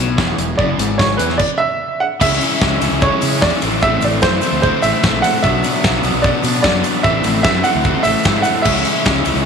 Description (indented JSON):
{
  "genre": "indie rock",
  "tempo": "149 BPM",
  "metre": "4/4",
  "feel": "straight",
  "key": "E mixolydian",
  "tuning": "A4 = 439 Hz",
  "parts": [
    { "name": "warm upright piano", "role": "melody", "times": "0.0-9.5 s", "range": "B4 to F#5", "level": "-18 LUFS", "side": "right 3 dB", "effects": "tape echo" },
    { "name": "tonewheel organ", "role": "sustained chords", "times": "0.0-9.5 s", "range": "E3 to C#6", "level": "-30 LUFS", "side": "equal", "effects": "none" },
    { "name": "overdriven electric guitar", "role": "riff", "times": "0.0-9.5 s", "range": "E2 to F#4", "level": "-20 LUFS", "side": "left 14 dB", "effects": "none" },
    { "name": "fuzz fingered electric bass", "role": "bass", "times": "0.0-9.5 s", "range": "E1 to C#3", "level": "-21 LUFS", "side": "equal", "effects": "overdrive" },
    { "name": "overdriven semi-hollow guitar", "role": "riff", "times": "0.2-9.5 s", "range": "E3 to G#4", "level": "-23 LUFS", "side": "right 14 dB", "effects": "wide subtle chorus" },
    { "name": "big rock drum kit", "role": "drums", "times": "0.2-9.4 s", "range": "crash cymbal, hi-hat, kick drum, snare drum", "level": "-18 LUFS", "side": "equal", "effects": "none" },
    { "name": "tube shaker", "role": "percussion", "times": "2.2-9.4 s", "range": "none", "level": "-36 LUFS", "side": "left 17 dB", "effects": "none" }
  ],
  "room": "moderate echo chamber reverb, RT60 2.1 s",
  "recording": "1960s-style stereo with parts hard left and right",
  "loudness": "-13 LUFS",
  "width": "side -6 dB against mid",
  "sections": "0.0-2.2 A section; 2.2-9.5 B section",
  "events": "stop 1.4-2.2",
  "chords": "0.0 E; 2.2 C#m; 3.6 Am6; 5.4 Bm7; 7.0 Am6; 8.7 C#m",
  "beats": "0.18 | 0.59 0.99 1.40 1.80 | 2.21 2.61 3.02 3.42 | 3.82 4.23 4.63 5.03 | 5.44 5.84 6.24 6.64 | 7.05 7.45 7.85 8.26 | 8.66 9.06"
}